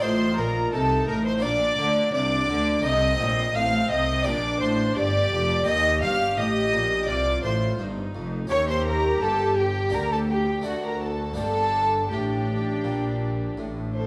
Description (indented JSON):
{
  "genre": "classical, baroque-style concerto movement with solo episodes",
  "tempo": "85 BPM",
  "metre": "4/4",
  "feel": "straight",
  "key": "G minor",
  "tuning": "A4 = 441 Hz",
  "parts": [
    { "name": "rich studio violin section", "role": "melody", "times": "0.0-13.6 s", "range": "F#5 to F6", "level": "-35 LUFS", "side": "equal", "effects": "none" },
    { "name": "warm violin", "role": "melody", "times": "0.0-14.1 s", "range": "F#4 to F5", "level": "-29 LUFS", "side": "equal", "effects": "none" },
    { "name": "rich chamber violin section", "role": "second line", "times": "0.0-14.1 s", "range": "F#4 to F5", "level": "-32 LUFS", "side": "equal", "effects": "none" },
    { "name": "harpsichord", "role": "accompaniment", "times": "0.0-14.1 s", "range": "D2 to G4", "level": "-37 LUFS", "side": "equal", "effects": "none" },
    { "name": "rich chamber viola section", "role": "accompaniment", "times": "0.0-14.1 s", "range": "C4 to G4", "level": "-33 LUFS", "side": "equal", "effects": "none" },
    { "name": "rich chamber double bass section", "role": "bass", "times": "0.0-14.1 s", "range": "F1 to Eb2", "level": "-32 LUFS", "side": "equal", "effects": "none" },
    { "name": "rich studio cello section", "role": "bass", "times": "0.0-14.1 s", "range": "D2 to D3", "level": "-32 LUFS", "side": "equal", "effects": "none" }
  ],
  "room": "moderate recital hall reverb, RT60 1.2 s",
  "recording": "none",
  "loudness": "-24 LUFS",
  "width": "mono",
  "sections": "0.0-14.1 A section",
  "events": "none",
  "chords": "0.0 F7/A; 1.4 Bb; 2.9 Adim; 4.3 Gm; 5.7 Cm; 8.5 Eb7; 9.9 Gm/D; 10.7 D; 11.4 Gm"
}